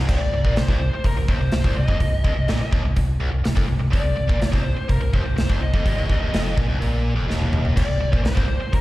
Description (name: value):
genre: hard rock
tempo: 125 BPM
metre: 4/4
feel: straight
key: C minor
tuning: A4 = 440 Hz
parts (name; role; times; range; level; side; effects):
- tight distorted guitar; riff; 0.0-8.8 s; C2 to Bb2; -26 LUFS; equal; distortion, slapback echo
- fingered electric bass; bass; 0.0-8.8 s; C1 to Bb1; -23 LUFS; equal; none
- nasal lead guitar with a parked wah; melody; 0.1-8.8 s; Bb4 to Eb5; -28 LUFS; left 1 dB; overdrive, plate reverb, slapback echo, analog delay
- big rock drum kit; drums; 0.1-8.8 s; crash cymbal, hi-hat, kick drum, snare drum, toms; -22 LUFS; equal; none
room: light reverb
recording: live gig heard through the venue's PA, recital hall reverb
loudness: -18 LUFS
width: side -17 dB against mid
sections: 0.1-8.8 A section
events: drum fill 7.3-7.8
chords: 0.1 Cm